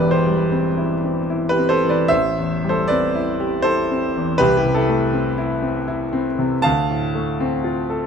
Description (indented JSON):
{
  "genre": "classical, romantic nocturne for solo piano",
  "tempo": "73-83 BPM",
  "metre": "3/4",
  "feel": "rubato",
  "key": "unclear",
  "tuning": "A4 = 440 Hz",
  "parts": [
    { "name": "clear grand piano", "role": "solo", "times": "0.0-8.1 s", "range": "E1 to A5", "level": "-17 LUFS", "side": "equal", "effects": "none" }
  ],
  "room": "moderate recital hall reverb, RT60 1.3 s",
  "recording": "close, detailed microphones",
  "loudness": "-17 LUFS",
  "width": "side -6 dB against mid",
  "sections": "0.0-8.1 A section",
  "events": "none",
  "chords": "0.0 C/E; 2.1 Am7; 4.4 Am/C; 6.7 Dm7"
}